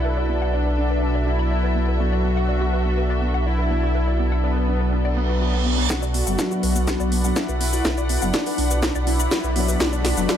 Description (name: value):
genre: melodic techno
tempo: 123 BPM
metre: 4/4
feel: straight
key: B minor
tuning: A4 = 441 Hz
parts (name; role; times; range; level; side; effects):
- soft supersaw; melody; 0.0-10.4 s; B3 to F#4; -27 LUFS; equal; low-pass filter, tape echo
- sweeping resonant pad; sustained chords; 0.0-10.4 s; F#4 to B5; -32 LUFS; right 1 dB; chorus, sidechain pumping
- warbly dusty pluck; arpeggios; 0.0-10.4 s; B3 to B5; -32 LUFS; right 1 dB; chorus, sidechain pumping, ping-pong delay
- analog synth brass; stabs; 0.0-10.4 s; F#3 to D4; -28 LUFS; left 1 dB; chorus, sidechain pumping
- dark detuned saw bass; bass; 0.0-10.3 s; F#1 to B1; -22 LUFS; equal; sidechain pumping
- dark studio string section; texture; 0.0-10.4 s; A4 to F#5; -31 LUFS; left 2 dB; sidechain pumping
- reverse cymbal and riser; sound effects; 5.1-10.4 s; none; -32 LUFS; right 4 dB; none
- electronic kick drum; drums; 5.9-10.4 s; none; -30 LUFS; equal; overdrive, high-pass filter on kick
- techno drum kit; drums; 5.9-10.4 s; hi-hat, shaker, snare drum; -25 LUFS; left 1 dB; overdrive
room: light reverb, digital ambience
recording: none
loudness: -19 LUFS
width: side -9 dB against mid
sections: 0.0-5.9 A section; 5.9-10.4 B section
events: filter sweep on analog synth pad 0.0-5.9; reverse cymbal 5.1-5.9; build-up 5.9-10.4; drum fill 5.9-10.4; filter sweep on analog polysynth 5.9-10.4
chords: 0.0 Bm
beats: | 0.05 0.54 1.02 1.51 | 2.00 2.49 2.97 3.46 | 3.95 4.44 4.92 5.41 | 5.90 6.39 6.88 7.36 | 7.85 8.34 8.83 9.31 | 9.80 10.29